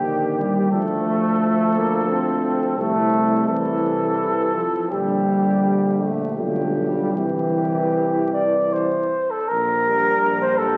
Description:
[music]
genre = classical, hymn-like piece for brass band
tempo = 74-88 BPM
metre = 3/4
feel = rubato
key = unclear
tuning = A4 = 440 Hz
[part]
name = dark cornet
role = melody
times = 0.0-10.8 s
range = G4 to D5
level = -25 LUFS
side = equal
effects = none
[part]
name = mellow French horn section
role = second line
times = 0.0-10.8 s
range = D4 to G4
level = -33 LUFS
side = equal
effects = none
[part]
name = mellow trombone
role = accompaniment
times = 0.0-10.8 s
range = C3 to G3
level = -30 LUFS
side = equal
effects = none
[part]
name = warm trombone section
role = accompaniment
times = 0.0-10.8 s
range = D3 to D4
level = -25 LUFS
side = equal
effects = none
[part]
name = clear tuba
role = bass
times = 0.0-10.8 s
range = Bb1 to D2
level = -30 LUFS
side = equal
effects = none
[sound]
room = wet concert hall reverb, RT60 2.4 s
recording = very old 78 rpm record, vinyl crackle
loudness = -21 LUFS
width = mono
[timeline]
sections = 0.0-9.5 A section; 9.5-10.8 B section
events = none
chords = 0.0 Gm/Bb; 0.7 Dm; 2.8 Am/C; 4.9 Gm/Bb; 6.4 G7/B; 7.1 C; 9.5 Gm/Bb

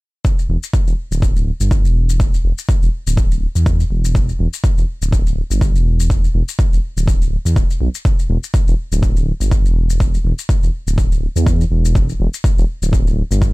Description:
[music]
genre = afro house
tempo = 123 BPM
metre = 4/4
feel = swing 56% on 16ths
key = E minor pentatonic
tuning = A4 = 440 Hz
[part]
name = electronic kick drum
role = drums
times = 0.2-13.5 s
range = none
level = -15 LUFS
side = equal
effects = overdrive
[part]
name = shaker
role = drums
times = 0.3-13.5 s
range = none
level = -31 LUFS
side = left 7 dB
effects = overdrive
[part]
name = dark detuned saw bass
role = bass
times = 0.5-13.5 s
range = D1 to E2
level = -16 LUFS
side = equal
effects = sidechain pumping
[sound]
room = little or no reverb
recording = none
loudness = -14 LUFS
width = side -22 dB against mid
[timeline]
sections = 0.2-13.5 A section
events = filter sweep on detuned saw bass 0.2-13.5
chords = none

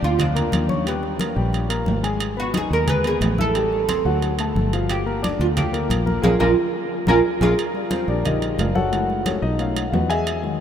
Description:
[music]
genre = Afro-Cuban jazz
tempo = 179 BPM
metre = 4/4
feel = straight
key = unclear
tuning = A4 = 440 Hz
[part]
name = oud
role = melody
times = 0.0-7.5 s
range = Cb4 to Cb5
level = -24 LUFS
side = right 3 dB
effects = none
[part]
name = warm grand piano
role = accompaniment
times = 0.0-10.6 s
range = D#3 to Fb6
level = -25 LUFS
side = left 3 dB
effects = none
[part]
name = fingered electric bass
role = bass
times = 0.0-10.6 s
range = Gb1 to Fb2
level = -24 LUFS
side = equal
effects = none
[part]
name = congas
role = percussion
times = 0.0-10.6 s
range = none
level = -27 LUFS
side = equal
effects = none
[part]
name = timbales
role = percussion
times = 0.2-10.4 s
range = none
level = -30 LUFS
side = right 6 dB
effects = none
[sound]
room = wet huge ambient reverb, RT60 8.2 s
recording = in a vast, echoing space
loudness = -18 LUFS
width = side -9 dB against mid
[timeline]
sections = 0.0-7.6 A section; 7.6-10.6 B section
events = band accent 6.2-7.6; grand piano solo 7.6-10.6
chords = 0.0 Gm7 (rootless); 0.9 Eb; 2.2 Abm; 3.5 Am7; 4.2 D; 4.9 Gm7; 6.2 Bb5; 7.6 Ebmaj9; 8.9 Gbm7; 9.6 B7

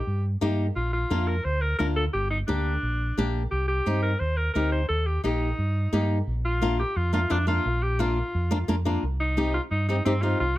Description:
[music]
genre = latin, cumbia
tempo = 174 BPM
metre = 4/4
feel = straight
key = Bb major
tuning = A4 = 442 Hz
[part]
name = bright alto saxophone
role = melody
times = 0.0-10.6 s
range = C4 to C5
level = -29 LUFS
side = equal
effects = none
[part]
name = fingered electric bass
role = bass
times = 0.1-10.6 s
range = G1 to G2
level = -26 LUFS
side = equal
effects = none
[part]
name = flamenco guitar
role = accompaniment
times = 0.4-10.4 s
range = Bb3 to G4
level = -27 LUFS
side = left 1 dB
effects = none
[sound]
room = little or no reverb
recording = close, detailed microphones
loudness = -23 LUFS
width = side -16 dB against mid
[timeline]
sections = 0.0-6.3 A section; 6.3-10.6 B section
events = none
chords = 0.0 Eb; 0.8 Bb; 2.1 Gm; 3.5 Cm; 4.9 Eb; 6.3 Bb; 9.0 Cm

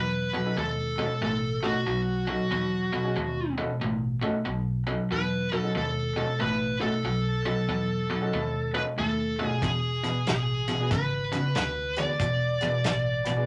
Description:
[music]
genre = electric blues shuffle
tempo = 93 BPM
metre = 4/4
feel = swing 64% on 8ths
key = B mixolydian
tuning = A4 = 440 Hz
[part]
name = smooth overdriven lead guitar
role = melody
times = 0.0-13.5 s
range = F#4 to D5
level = -32 LUFS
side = equal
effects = none
[part]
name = cranked stack guitar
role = riff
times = 0.0-13.5 s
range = E2 to A3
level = -31 LUFS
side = equal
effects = overdrive
[part]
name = vintage muted fingered electric bass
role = bass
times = 0.0-13.3 s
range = E1 to E2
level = -38 LUFS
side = equal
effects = none
[part]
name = clear upright piano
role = accompaniment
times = 0.3-13.5 s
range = B3 to B4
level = -37 LUFS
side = equal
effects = none
[part]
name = warm soul drum kit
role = drums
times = 9.6-13.4 s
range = hi-hat, kick drum, snare drum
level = -33 LUFS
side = equal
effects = none
[sound]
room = moderate small room reverb, RT60 0.6 s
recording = none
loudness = -28 LUFS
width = mono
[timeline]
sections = 0.0-13.5 A section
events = none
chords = 0.0 B7; 9.6 E7

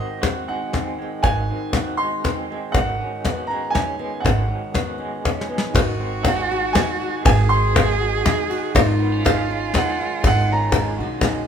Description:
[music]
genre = acoustic folk duo or small band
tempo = 120 BPM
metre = 3/4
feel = straight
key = Ab mixolydian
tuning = A4 = 440 Hz
[part]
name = clear upright piano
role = melody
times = 0.0-11.0 s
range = Eb5 to C6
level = -25 LUFS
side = right 3 dB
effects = none
[part]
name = fingerpicked steel-string acoustic guitar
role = accompaniment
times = 0.0-11.5 s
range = Ab2 to Gb4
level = -29 LUFS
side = left 3 dB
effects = none
[part]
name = electric guitar through a small old amp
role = arpeggios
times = 0.0-11.5 s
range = Eb3 to Gb4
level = -29 LUFS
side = right 2 dB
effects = tremolo
[part]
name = soft brush drum kit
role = drums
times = 0.2-11.3 s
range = hi-hat, kick drum, ride cymbal, snare drum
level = -26 LUFS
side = equal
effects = none
[part]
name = cajon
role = percussion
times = 0.2-11.4 s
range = none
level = -20 LUFS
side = left 3 dB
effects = none
[part]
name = upright bass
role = bass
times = 1.2-11.5 s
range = Ab1 to B1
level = -23 LUFS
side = right 1 dB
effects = none
[part]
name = warm cello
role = second line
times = 5.7-11.3 s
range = D#4 to Ab4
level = -26 LUFS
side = right 5 dB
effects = none
[sound]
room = moderate studio reverb, RT60 0.8 s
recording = minimal, uncompressed stereo recording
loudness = -18 LUFS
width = side -8 dB against mid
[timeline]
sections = 0.0-5.8 A section; 5.8-11.5 B section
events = drum fill 5.3-5.8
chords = 0.0 Ab7; 2.8 Badd9/Ab; 5.8 Ab7; 8.7 Badd9/Ab

